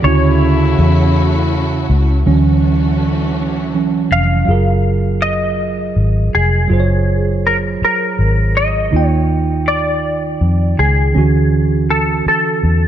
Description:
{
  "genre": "slow six-eight R&B",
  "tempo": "54 BPM (dotted quarters)",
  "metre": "6/8",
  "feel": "straight",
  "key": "unclear",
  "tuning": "A4 = 440 Hz",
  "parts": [
    { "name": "semi-hollow electric guitar", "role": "melody", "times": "0.0-12.9 s", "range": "Ab4 to F5", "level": "-18 LUFS", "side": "left 1 dB", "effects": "analog chorus, slapback echo" },
    { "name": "tine electric piano", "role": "accompaniment", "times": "0.0-12.9 s", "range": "C#3 to G5", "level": "-18 LUFS", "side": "right 6 dB", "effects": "none" },
    { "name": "warm studio string section", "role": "sustained chords", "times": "0.0-4.5 s", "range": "C#3 to F#4", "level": "-24 LUFS", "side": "left 2 dB", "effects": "none" },
    { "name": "warm horn section", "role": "stabs", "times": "0.0-1.8 s", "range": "C#3 to E4", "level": "-24 LUFS", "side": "left 5 dB", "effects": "slapback echo" },
    { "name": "vintage muted fingered electric bass", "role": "bass", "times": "0.0-12.9 s", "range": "F1 to F2", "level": "-15 LUFS", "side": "left 1 dB", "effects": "none" }
  ],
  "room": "light reverb, small room ambience",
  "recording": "dark, warm production",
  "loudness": "-12 LUFS",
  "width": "side -10 dB against mid",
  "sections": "0.0-2.3 A section; 2.3-4.5 B section; 4.5-12.9 C section",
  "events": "tine electric piano solo 2.3-4.5",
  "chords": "0.0 Dmaj9; 4.5 Gbmaj9; 8.9 Ebmaj9; 11.1 Dmaj9"
}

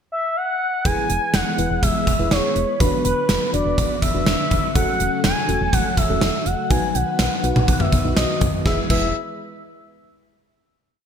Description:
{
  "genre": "synth-pop",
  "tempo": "123 BPM",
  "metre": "4/4",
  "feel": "straight",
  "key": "E mixolydian",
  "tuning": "A4 = 440 Hz",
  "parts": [
    { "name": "expressive synth lead", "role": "melody", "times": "0.1-9.1 s", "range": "B4 to G#5", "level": "-23 LUFS", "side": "left 1 dB", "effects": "chorus, ping-pong delay" },
    { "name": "FM electric piano with soft pad layer", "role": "accompaniment", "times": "0.9-9.1 s", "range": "C#4 to B4", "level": "-28 LUFS", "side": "left 1 dB", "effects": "chorus" },
    { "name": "string machine, full ensemble", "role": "sustained chords", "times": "0.9-8.9 s", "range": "C#3 to B4", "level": "-27 LUFS", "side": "left 1 dB", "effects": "phaser, ensemble chorus" },
    { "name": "solid FM bass", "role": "bass", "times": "0.9-9.1 s", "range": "E1 to B1", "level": "-24 LUFS", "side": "equal", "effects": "none" },
    { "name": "gated 80s drum kit", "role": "drums", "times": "0.9-9.0 s", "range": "crash cymbal, hi-hat, kick drum, snare drum, toms", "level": "-20 LUFS", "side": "equal", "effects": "gated reverb" }
  ],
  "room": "moderate lush hall reverb, RT60 1.8 s, small room ambience",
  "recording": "bright 1980s-style digital production",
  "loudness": "-17 LUFS",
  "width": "side -8 dB against mid",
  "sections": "0.0-0.9 pickup bar; 0.9-8.7 verse; 8.7-10.6 final chord",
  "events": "none",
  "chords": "0.0 N.C.; 0.9 E; 2.8 Bm/E; 4.8 F#m/E; 6.7 B; 8.7 E"
}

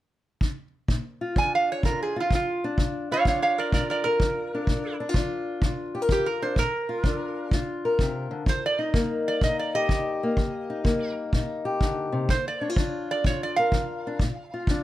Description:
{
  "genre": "acoustic country blues, solo or duo",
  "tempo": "126 BPM",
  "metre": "4/4",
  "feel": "swing 67% on 8ths",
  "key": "Bb major",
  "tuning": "A4 = 440 Hz",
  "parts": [
    { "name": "kick drum", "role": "drums", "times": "0.4-14.8 s", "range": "none", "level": "-24 LUFS", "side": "equal", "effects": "none" },
    { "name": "fingerpicked old ladder-braced acoustic guitar", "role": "accompaniment", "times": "0.9-14.8 s", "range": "Bb2 to Bb4", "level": "-28 LUFS", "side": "left 2 dB", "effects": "none" },
    { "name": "metal-body resonator slide guitar", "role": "melody", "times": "1.4-14.8 s", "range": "F4 to Ab5", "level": "-26 LUFS", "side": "right 3 dB", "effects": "plate reverb" }
  ],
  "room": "moderate studio reverb, RT60 0.5 s",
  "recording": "none",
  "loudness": "-23 LUFS",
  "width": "side -14 dB against mid",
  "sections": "0.9-14.8 A section",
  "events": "none",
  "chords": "0.0 N.C.; 0.9 Bb; 8.5 Eb; 12.3 Bb"
}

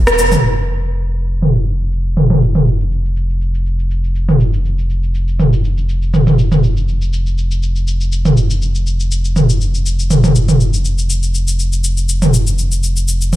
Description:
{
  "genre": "afro house",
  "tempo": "121 BPM",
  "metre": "4/4",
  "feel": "swing 54% on 16ths",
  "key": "unclear",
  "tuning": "A4 = 442 Hz",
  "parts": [
    { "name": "warm sub bass", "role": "bass", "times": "0.0-13.4 s", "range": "Eb1 to F1", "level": "-16 LUFS", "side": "equal", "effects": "none" },
    { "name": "house drum kit", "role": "drums", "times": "0.1-13.4 s", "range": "cabasa, rim click, toms", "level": "-14 LUFS", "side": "right 1 dB", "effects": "low-pass filter on perc, low-pass filter on snare, low-pass filter on toms, low-pass filter on room" }
  ],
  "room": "light reverb",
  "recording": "none",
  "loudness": "-12 LUFS",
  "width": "side -15 dB against mid",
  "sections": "0.4-13.4 A section",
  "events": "band accent 0.1; filter sweep on drum 0.4-13.4",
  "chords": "none"
}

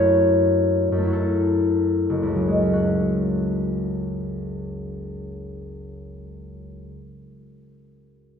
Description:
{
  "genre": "classical, solo harp piece",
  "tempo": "34-47 BPM (dotted quarters)",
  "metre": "6/8",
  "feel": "rubato",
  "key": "F# minor",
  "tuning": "A4 = 440 Hz",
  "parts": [
    { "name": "concert harp", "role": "solo", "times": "0.0-7.5 s", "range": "F#1 to D#5", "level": "-21 LUFS", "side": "left 1 dB", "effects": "none" }
  ],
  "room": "wet recital hall reverb, RT60 1.6 s",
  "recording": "recorded in a church or concert hall",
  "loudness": "-19 LUFS",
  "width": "side -7 dB against mid",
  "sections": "0.0-2.7 A section; 2.7-8.4 B section",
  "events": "slowing down 0.0-2.7",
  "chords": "0.0 F#m7; 2.7 F#madd9"
}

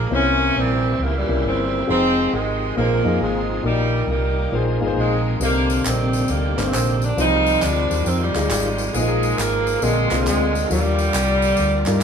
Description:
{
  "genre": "uptempo gospel",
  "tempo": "136 BPM",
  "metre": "4/4",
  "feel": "swing 65% on 8ths",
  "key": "Eb major",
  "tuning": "A4 = 440 Hz",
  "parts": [
    { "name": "warm saxophone section", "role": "melody", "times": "0.0-12.0 s", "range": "Bb2 to Eb4", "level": "-20 LUFS", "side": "right 1 dB", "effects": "none" },
    { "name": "bright tonewheel organ", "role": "sustained chords", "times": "0.0-12.0 s", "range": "C3 to D5", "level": "-29 LUFS", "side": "equal", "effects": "slow rotary speaker, overdrive, chorus vibrato" },
    { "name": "hollow-body short-scale fingered electric bass", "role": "bass", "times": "0.0-12.0 s", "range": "F1 to G2", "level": "-22 LUFS", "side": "right 1 dB", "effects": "none" },
    { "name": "dark grand piano", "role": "accompaniment", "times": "0.1-12.0 s", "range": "Bb2 to Eb5", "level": "-24 LUFS", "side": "left 5 dB", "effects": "none" },
    { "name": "tambourine and handclaps", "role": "percussion", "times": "5.4-11.9 s", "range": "none", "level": "-29 LUFS", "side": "equal", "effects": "none" }
  ],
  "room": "wet studio reverb, RT60 0.7 s",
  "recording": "band playing live in one room",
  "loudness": "-17 LUFS",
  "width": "side -7 dB against mid",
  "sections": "0.0-12.0 A section",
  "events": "grand piano fill 11.8",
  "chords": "0.1 C7b9; 1.9 Fm9; 2.8 Bb9sus4; 3.6 Eb/Bb; 4.5 Bb9sus4; 5.4 Cm9; 7.2 Fm9/C; 8.9 Bb7sus4; 9.8 Bb9; 10.7 Ebmaj9"
}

